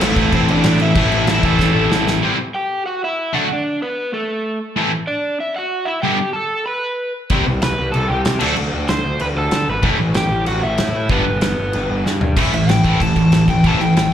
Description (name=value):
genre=punk rock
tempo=189 BPM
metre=4/4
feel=straight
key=unclear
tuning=A4 = 438 Hz
part: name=crunchy overdriven guitar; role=melody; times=0.0-14.1 s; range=A3 to C6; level=-21 LUFS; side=equal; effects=slapback echo, digital delay
part: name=distorted electric guitar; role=riff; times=0.0-14.1 s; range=G2 to E4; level=-19 LUFS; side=right 9 dB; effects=overdrive, slapback echo
part: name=overdriven semi-hollow guitar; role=riff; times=0.0-14.1 s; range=G2 to D4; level=-19 LUFS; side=left 9 dB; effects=slapback echo
part: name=fuzz picked electric bass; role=bass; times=0.0-2.2, 7.3-14.1 s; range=G1 to D3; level=-20 LUFS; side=equal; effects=overdrive
part: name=loose indie drum kit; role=drums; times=0.0-2.1, 7.3-14.0 s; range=crash cymbal, kick drum, snare drum, toms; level=-20 LUFS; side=equal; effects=none
room=little or no reverb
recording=live gig heard through the venue's PA, club reverb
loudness=-15 LUFS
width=side -10 dB against mid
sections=0.0-2.2 A section; 2.2-12.4 B section; 12.4-14.1 C section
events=drum fill 1.6-2.2, 12.1-12.4; overdriven electric guitar solo 12.4-14.1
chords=0.0 Am; 2.2 C; 3.3 D; 4.8 A5; 6.0 G; 7.3 C5; 8.4 D5; 9.8 A5; 11.1 G; 12.4 A5